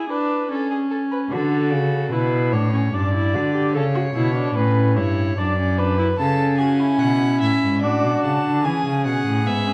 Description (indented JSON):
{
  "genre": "classical, baroque-style fugue for string quartet",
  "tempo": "74 BPM",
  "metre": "3/4",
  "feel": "straight",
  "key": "D major",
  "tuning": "A4 = 440 Hz",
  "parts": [
    { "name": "dark violin", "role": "second line", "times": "0.0-9.7 s", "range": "E4 to D5", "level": "-28 LUFS", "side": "equal", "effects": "none" },
    { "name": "warm viola", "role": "accompaniment", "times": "0.0-9.7 s", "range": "B3 to A4", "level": "-25 LUFS", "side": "equal", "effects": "none" },
    { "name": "rich cello", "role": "bass", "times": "1.3-9.7 s", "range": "F#2 to E3", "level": "-23 LUFS", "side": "equal", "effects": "none" },
    { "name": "rich violin", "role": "melody", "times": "6.2-9.7 s", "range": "D5 to A5", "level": "-28 LUFS", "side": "equal", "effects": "none" }
  ],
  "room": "wet recital hall reverb, RT60 1.7 s",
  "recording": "dark, warm production",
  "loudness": "-20 LUFS",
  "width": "mono",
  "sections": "0.0-9.7 A section",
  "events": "none",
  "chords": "0.0 E7; 0.5 A/C#; 1.3 D; 2.9 G5; 3.8 A7; 5.4 D/F#; 6.2 A/C#; 7.8 D/A; 8.6 E"
}